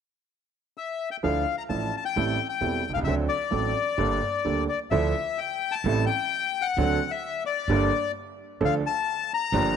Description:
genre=tango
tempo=130 BPM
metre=4/4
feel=rubato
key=D minor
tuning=A4 = 437 Hz
part: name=bandoneon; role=melody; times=0.8-9.8 s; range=D5 to Bb5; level=-27 LUFS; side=left 8 dB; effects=none
part: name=clear upright piano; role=accompaniment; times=1.2-9.7 s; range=E1 to A4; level=-27 LUFS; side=right 5 dB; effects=none
part: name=upright bass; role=bass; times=1.2-9.7 s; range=E1 to D2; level=-30 LUFS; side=right 2 dB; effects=none
room=light reverb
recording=none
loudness=-24 LUFS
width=side -7 dB against mid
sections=0.0-1.2 A section; 1.2-4.9 B section; 4.9-9.8 C section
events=none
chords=0.0 N.C.; 1.2 Dmadd9; 2.2 Am7; 3.1 D7; 4.0 Gmadd9; 4.9 Dmadd9; 5.9 Am7; 6.8 D7; 7.7 Gmadd9; 8.6 Dm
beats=0.32 0.77 | 1.23 1.70 2.16 2.62 | 3.07 3.53 3.99 4.45 | 4.92 5.39 5.86 6.32 | 6.78 7.24 7.70 8.16 | 8.62 9.07 9.53

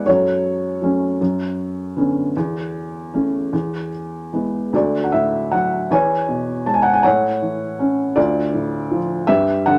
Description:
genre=classical, lyrical solo piano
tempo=50-54 BPM (dotted quarters)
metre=6/8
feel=rubato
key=unclear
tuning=A4 = 440 Hz
part: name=felt-muted upright piano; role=solo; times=0.0-9.8 s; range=D2 to A5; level=-19 LUFS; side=equal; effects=none
room=moderate studio reverb, RT60 0.8 s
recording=none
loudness=-20 LUFS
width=mono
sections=0.0-4.7 A section; 4.7-9.8 B section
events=none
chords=0.1 F#m; 1.2 Bmadd9/F#; 2.4 A/E; 3.5 E; 4.7 D; 5.9 E6; 7.0 A6; 8.2 Dm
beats=| 0.08 1.20 | 2.35 3.53 | 4.73 5.91 | 7.05 8.17 | 9.29

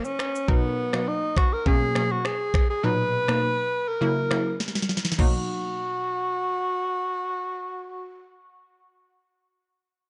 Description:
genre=afrobeats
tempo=102 BPM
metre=4/4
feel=straight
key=B major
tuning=A4 = 435 Hz
part: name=breathy tenor saxophone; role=melody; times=0.0-8.3 s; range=B3 to B4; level=-29 LUFS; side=equal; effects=delay
part: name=afro-pop drum kit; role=drums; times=0.0-5.3 s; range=crash cymbal, finger snaps, kick drum, rim click, shaker, snare drum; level=-27 LUFS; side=equal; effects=none
part: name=analog pluck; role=accompaniment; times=0.5-9.0 s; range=A#2 to A#4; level=-30 LUFS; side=equal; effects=chorus
room=light reverb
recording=dark, warm production, nothing above 11.0 kHz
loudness=-25 LUFS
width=mono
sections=0.0-5.2 A section; 5.2-7.5 B section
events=drum fill 4.6-5.2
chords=0.5 Bmaj7; 1.7 G#m11/B; 2.8 Bmaj7; 4.0 F#7; 5.2 Bmaj7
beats=| 0.48 1.07 1.66 2.25 | 2.84 3.42 4.01 4.60 | 5.19 5.78 6.37 6.95

